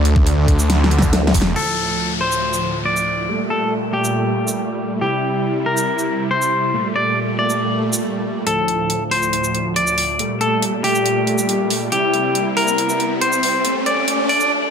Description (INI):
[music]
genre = heavy wobble dubstep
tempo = 139 BPM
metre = 4/4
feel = half-time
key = D minor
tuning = A4 = 440 Hz
[part]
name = supersaw chords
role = sustained chords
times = 0.0-14.7 s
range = D2 to D5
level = -22 LUFS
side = right 1 dB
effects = sidechain pumping, low-pass filter
[part]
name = snarling distorted saw bass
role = bass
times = 0.0-1.5 s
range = E1 to D2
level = -16 LUFS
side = equal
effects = distortion, overdrive
[part]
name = dubstep drum kit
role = drums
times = 0.1-14.5 s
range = crash cymbal, hi-hat, shaker, snare drum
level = -22 LUFS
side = equal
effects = none
[part]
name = electronic kick drum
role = drums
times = 0.2-1.4 s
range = none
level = -17 LUFS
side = equal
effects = none
[part]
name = formant-sweep wobble bass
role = bass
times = 1.1-1.3 s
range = D2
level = -17 LUFS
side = equal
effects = chorus, overdrive
[part]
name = twangy electric guitar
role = melody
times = 1.6-14.5 s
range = G4 to D5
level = -19 LUFS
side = left 2 dB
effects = ping-pong delay
[part]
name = downlifter and riser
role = sound effects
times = 1.6-5.0, 10.6-14.5 s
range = none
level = -26 LUFS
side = left 1 dB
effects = none
[sound]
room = moderate digital room reverb, RT60 0.9 s, digital ambience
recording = high-pass filter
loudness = -16 LUFS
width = side -6 dB against mid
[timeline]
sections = 0.0-1.6 A section; 1.6-8.5 B section; 8.5-14.7 C section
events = drop 0.0-1.6; drum fill 0.7-1.6; filter sweep on supersaw synth 1.6-8.5, 8.5-14.7; build-up 8.5-14.7; riser 10.6-14.5; break 14.5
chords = 0.0 D5; 1.6 Dm; 3.3 Gmadd9; 5.0 C; 6.7 Gmadd9; 8.5 Dm; 10.2 Gmadd9; 11.9 C; 13.6 Gmadd9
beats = 0.27 0.70 1.13 | 1.56 1.99 2.42 2.85 | 3.29 3.72 4.15 4.58 | 5.01 5.45 5.88 6.31 | 6.74 7.17 7.60 8.04 | 8.47 8.90 9.33 9.76 | 10.19 10.62 11.06 11.49 | 11.92 12.35 12.78 13.21 | 13.65 14.08 14.51